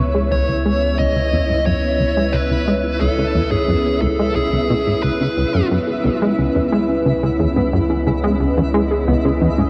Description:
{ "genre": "ambient, sequencer-driven space music", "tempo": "89 BPM", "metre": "4/4", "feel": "straight", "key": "C# minor", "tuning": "A4 = 441 Hz", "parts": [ { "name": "sweeping resonant pad", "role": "sustained chords", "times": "0.0-9.7 s", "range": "B3 to D#5", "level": "-24 LUFS", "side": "equal", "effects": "chorus" }, { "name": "plucky analog bass", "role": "riff", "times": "0.0-9.6 s", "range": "C#2 to G#3", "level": "-22 LUFS", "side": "equal", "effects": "subtle chorus, analog delay" }, { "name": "warm sub bass", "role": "bass", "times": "0.0-9.7 s", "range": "C#2", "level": "-26 LUFS", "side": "equal", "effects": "none" }, { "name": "twinkling granular texture", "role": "texture", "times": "0.0-9.7 s", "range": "E4", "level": "-30 LUFS", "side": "equal", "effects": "built-in reverb" }, { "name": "dark smooth lead guitar", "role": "melody", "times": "0.3-5.7 s", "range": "G#4 to D#5", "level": "-25 LUFS", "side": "equal", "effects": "overdrive, analog delay" }, { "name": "warbly dusty pluck", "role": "arpeggios", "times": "5.9-9.7 s", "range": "B3 to G#4", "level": "-26 LUFS", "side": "equal", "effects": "chorus, analog delay" } ], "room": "wet huge ambient reverb, RT60 7.1 s", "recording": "worn, warbling old tape, cassette tape, warbly pitch drift", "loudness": "-18 LUFS", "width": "mono", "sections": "0.0-9.7 A section", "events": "filter sweep on analog synth bass 0.0-9.7", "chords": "0.0 C#m7" }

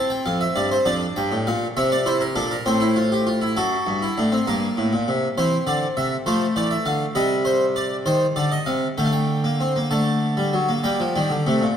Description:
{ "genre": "classical, baroque-style 3-part fugue for harpsichord", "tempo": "66 BPM (dotted quarters)", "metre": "6/8", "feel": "straight", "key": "F major, G minor from 7.2 s", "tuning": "A4 = 441 Hz", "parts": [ { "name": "harpsichord", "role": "solo", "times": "0.0-11.8 s", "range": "F2 to A5", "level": "-19 LUFS", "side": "equal", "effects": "none" } ], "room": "moderate concert hall reverb, RT60 2.4 s", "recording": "none", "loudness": "-19 LUFS", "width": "side -8 dB against mid", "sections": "0.0-3.6 A section; 3.6-10.8 B section", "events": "none", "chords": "0.0 F5; 0.9 Gm7/F; 1.8 C7; 2.7 F/A; 3.6 D7/F#; 4.5 Gm; 5.4 C; 6.3 F; 7.2 Cmadd9; 9.0 Dsus4; 9.9 D; 10.8 Gm" }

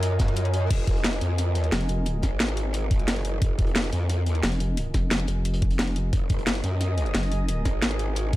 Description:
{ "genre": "dark technical drum and bass", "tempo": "177 BPM", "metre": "4/4", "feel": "straight", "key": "F phrygian", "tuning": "A4 = 441 Hz", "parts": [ { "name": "growl bass", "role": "bass", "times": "0.0-8.4 s", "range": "F1 to Gb2", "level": "-25 LUFS", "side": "equal", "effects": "chorus, tube saturation, sidechain pumping" }, { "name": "crunchy breakbeat drum kit", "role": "drums", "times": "0.0-8.4 s", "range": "hi-hat, snare drum", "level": "-40 LUFS", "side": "equal", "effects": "none" }, { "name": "drum and bass drum kit", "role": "drums", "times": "0.0-8.4 s", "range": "crash cymbal, hi-hat, snare drum", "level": "-28 LUFS", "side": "equal", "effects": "overdrive" }, { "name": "airy breathy pad", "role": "texture", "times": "0.0-8.4 s", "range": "F4 to Ab5", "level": "-36 LUFS", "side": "right 1 dB", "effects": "chorus, sidechain pumping" }, { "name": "electronic kick drum", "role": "drums", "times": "0.2-8.4 s", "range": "none", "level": "-23 LUFS", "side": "equal", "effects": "none" }, { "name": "vowel-sweep wobble bass", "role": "bass", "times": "1.7-2.2, 4.4-7.6 s", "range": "F1 to Gb1", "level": "-25 LUFS", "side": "equal", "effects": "chorus, tube saturation" } ], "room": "little or no reverb", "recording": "dark, warm production", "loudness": "-22 LUFS", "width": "side -16 dB against mid", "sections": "0.0-8.4 A section", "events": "none", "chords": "0.0 Gbsus2; 0.7 Fm; 6.1 Gbsus2" }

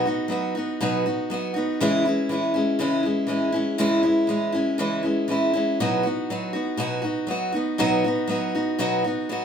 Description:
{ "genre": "rock", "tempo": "120 BPM", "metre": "4/4", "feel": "straight", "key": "unclear", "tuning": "A4 = 440 Hz", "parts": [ { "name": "picked steel-string acoustic guitar", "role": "solo", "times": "0.0-9.4 s", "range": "B2 to F#4", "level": "-21 LUFS", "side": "equal", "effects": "none" } ], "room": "wet small room reverb, RT60 0.5 s", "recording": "band playing live in one room", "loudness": "-21 LUFS", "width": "side -7 dB against mid", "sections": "0.0-9.4 A section", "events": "none", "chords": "0.0 B; 1.8 C#m; 5.8 B" }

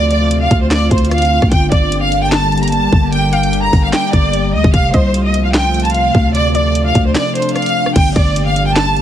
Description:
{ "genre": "hip hop, trap", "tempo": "149 BPM", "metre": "4/4", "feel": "half-time", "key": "G minor", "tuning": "A4 = 442 Hz", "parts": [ { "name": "warm studio violin section", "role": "melody", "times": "0.0-9.0 s", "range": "C5 to Bb5", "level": "-16 LUFS", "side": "right 1 dB", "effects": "digital delay" }, { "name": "warbly tape-like pad", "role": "sustained chords", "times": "0.0-9.0 s", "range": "C3 to G4", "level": "-19 LUFS", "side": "left 1 dB", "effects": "chorus, built-in reverb" }, { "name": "growling 808-style bass", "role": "bass", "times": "0.0-9.0 s", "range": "F1 to D2", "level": "-16 LUFS", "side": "equal", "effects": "none" }, { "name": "trap drum kit", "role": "drums", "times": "0.1-9.0 s", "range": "crash cymbal, handclaps, hi-hat, kick drum, rim click, snare drum", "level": "-15 LUFS", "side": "equal", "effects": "none" }, { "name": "warbly dusty pluck", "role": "second line", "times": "1.7-9.0 s", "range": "D5 to F5", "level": "-27 LUFS", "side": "left 2 dB", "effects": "chorus, digital delay" } ], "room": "digital ambience", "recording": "heavily compressed radio sound, multiband compression", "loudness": "-11 LUFS", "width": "side -10 dB against mid", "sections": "0.0-8.0 A section; 8.0-9.0 A section", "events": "kick muted 7.2-8.0", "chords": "0.0 Dm7; 1.5 Gm; 4.7 F; 6.3 Dm7; 8.0 Gm" }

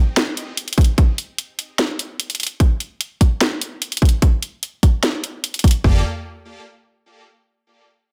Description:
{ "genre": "future bass", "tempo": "148 BPM", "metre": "4/4", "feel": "half-time", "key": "G minor", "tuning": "A4 = 437 Hz", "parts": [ { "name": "trap drum kit", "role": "drums", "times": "0.2-5.8 s", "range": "hi-hat, snare drum", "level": "-23 LUFS", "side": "equal", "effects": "overdrive, studio ambience" }, { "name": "trap drum kit", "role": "drums", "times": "0.8-5.9 s", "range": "kick drum, toms", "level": "-16 LUFS", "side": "equal", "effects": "overdrive, studio ambience" }, { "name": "supersaw chords", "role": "riff", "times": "5.8-6.0 s", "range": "Bb3 to D5", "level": "-34 LUFS", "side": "equal", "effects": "sidechain pumping, digital delay" }, { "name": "long sustained 808-style bass", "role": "bass", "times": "5.8-6.0 s", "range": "G1", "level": "-22 LUFS", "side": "equal", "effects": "sidechain pumping" } ], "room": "little or no reverb", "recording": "dense, heavily limited modern master", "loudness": "-19 LUFS", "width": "mono", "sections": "0.0-5.8 A section; 5.8-7.5 B section", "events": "none", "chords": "0.0 N.C.; 5.8 Gm9" }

